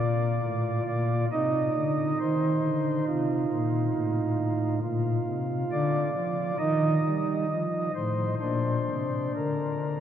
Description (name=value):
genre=classical, chorale-style piece for pipe organ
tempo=68 BPM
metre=4/4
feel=straight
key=Bb major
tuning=A4 = 440 Hz
part: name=pipe organ, flutes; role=solo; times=0.0-10.0 s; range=A2 to Eb5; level=-25 LUFS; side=equal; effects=none
room=wet cathedral reverb, RT60 5.7 s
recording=worn, warbling old tape, cassette tape, warbly pitch drift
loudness=-25 LUFS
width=side -9 dB against mid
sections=0.0-10.0 A section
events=none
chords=0.0 Bb; 1.3 F7/C; 4.8 Bb; 6.6 Eb; 7.5 F7; 8.4 Bb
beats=0.43 | 1.32 2.20 3.08 3.95 | 4.83 5.71 6.59 7.50 | 8.42 9.36